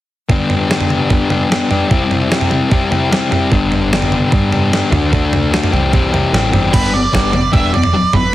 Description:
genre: indie rock.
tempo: 149 BPM.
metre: 4/4.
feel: straight.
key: G major.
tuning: A4 = 441 Hz.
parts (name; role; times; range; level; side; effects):
thick fuzz guitar; riff; 0.3-8.2 s; G2 to G4; -15 LUFS; left 3 dB; distortion.
gated 80s digital drum machine; drums; 0.3-8.2 s; crash cymbal, kick drum, snare drum, toms; -16 LUFS; right 1 dB; gated reverb, gated reverb snare.
overdriven picked electric bass; bass; 3.5-8.3 s; E1 to G2; -18 LUFS; right 1 dB; none.
octave-fuzz lead guitar; melody; 6.7-8.3 s; B4 to E5; -17 LUFS; right 4 dB; distortion.
room: light reverb.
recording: heavily compressed radio sound, multiband compression.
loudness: -12 LUFS.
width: side -14 dB against mid.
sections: 0.3-6.7 A section; 6.7-8.3 B section.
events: none.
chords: 0.3 G; 1.9 C; 3.5 G; 4.9 D; 5.7 C; 6.7 G.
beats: | 0.30 0.70 1.10 1.50 | 1.91 2.31 2.71 3.12 | 3.52 3.92 4.32 4.73 | 5.13 5.53 5.93 6.33 | 6.74 7.14 7.54 7.94.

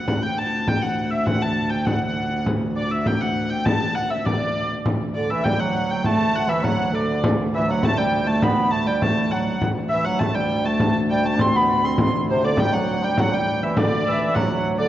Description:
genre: medieval dance.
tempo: 101 BPM.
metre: 2/4.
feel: straight.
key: D mixolydian.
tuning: A4 = 441 Hz.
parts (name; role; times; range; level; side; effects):
warm hurdy-gurdy; melody; 0.0-14.9 s; C5 to C6; -24 LUFS; left 1 dB; none.
dark viola da gamba; drone; 0.0-14.9 s; D2; -26 LUFS; equal; none.
frame drum; percussion; 0.1-14.6 s; none; -24 LUFS; left 1 dB; none.
clear bass clarinet; second line; 5.2-14.9 s; C3 to D4; -24 LUFS; right 3 dB; none.
room: wet concert hall reverb, RT60 2.3 s.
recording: worn, warbling old tape, cassette tape, warbly pitch drift, nothing above 8.0 kHz.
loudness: -19 LUFS.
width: side -12 dB against mid.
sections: 0.0-4.9 A section; 4.9-14.4 A section.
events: none.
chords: none.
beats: | 0.07 0.67 | 1.27 1.87 | 2.46 3.06 | 3.66 4.25 | 4.85 5.45 | 6.04 6.64 | 7.23 7.83 | 8.42 9.02 | 9.61 10.21 | 10.80 11.39 | 11.99 12.58 | 13.17 13.76 | 14.36.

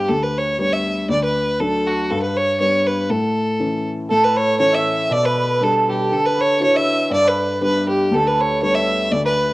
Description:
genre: celtic folk.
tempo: 120 BPM.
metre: 2/4.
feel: swing 54% on 8ths.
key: unclear.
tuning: A4 = 440 Hz.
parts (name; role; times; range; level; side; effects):
rich fiddle; melody; 0.0-9.5 s; F#4 to E5; -18 LUFS; equal; cassette tape.
dark upright piano; accompaniment; 0.0-9.5 s; D2 to F#4; -22 LUFS; left 2 dB; cassette tape.
cimbalom; second line; 4.1-9.5 s; G4 to E5; -21 LUFS; right 2 dB; cassette tape.
room: moderate spring reverb, RT60 1.3 s.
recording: home recording on cassette.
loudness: -16 LUFS.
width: side -18 dB against mid.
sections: 0.0-4.1 A section; 4.1-9.5 A section.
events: none.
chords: 0.0 G; 1.1 D; 2.1 G; 3.1 A; 5.1 G/B; 6.1 Dadd9; 7.1 G.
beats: | 0.09 0.59 | 1.10 1.60 | 2.10 2.60 | 3.10 3.60 | 4.10 4.61 | 5.11 5.61 | 6.11 6.61 | 7.11 7.61 | 8.11 8.62 | 9.12.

